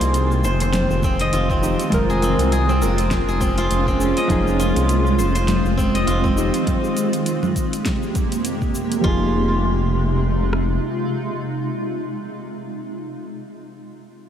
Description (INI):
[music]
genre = organic downtempo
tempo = 101 BPM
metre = 4/4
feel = swing 57% on 16ths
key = F minor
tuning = A4 = 440 Hz
[part]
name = deep mellow chord stab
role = accompaniment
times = 0.0-13.9 s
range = F3 to Bb4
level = -28 LUFS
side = right 1 dB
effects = chorus, sidechain pumping, tape echo
[part]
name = granular cloud pad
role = sustained chords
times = 0.0-12.2 s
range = F2 to G4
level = -23 LUFS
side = right 1 dB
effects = built-in reverb, analog chorus, sidechain pumping
[part]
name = steel-string zither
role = arpeggios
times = 0.0-11.6 s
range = C4 to Eb5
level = -24 LUFS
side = equal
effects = tape echo
[part]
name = smooth synth bass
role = bass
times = 0.0-10.8 s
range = F1 to C2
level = -21 LUFS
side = equal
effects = sidechain pumping
[part]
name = deep house drum kit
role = drums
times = 0.0-9.0 s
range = cabasa, congas, hi-hat, snare drum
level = -28 LUFS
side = right 1 dB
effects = studio reverb
[part]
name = deep house drum kit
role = drums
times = 1.0-10.7 s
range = kick drum, rim click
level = -23 LUFS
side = equal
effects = studio reverb
[sound]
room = moderate huge ambient reverb, RT60 7.6 s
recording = dreamy mix soaked in reverb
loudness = -17 LUFS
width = side -9 dB against mid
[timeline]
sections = 0.0-9.0 A section; 9.0-11.4 B section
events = none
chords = 0.0 Fm7; 1.9 Bbm7/F; 4.3 Fm7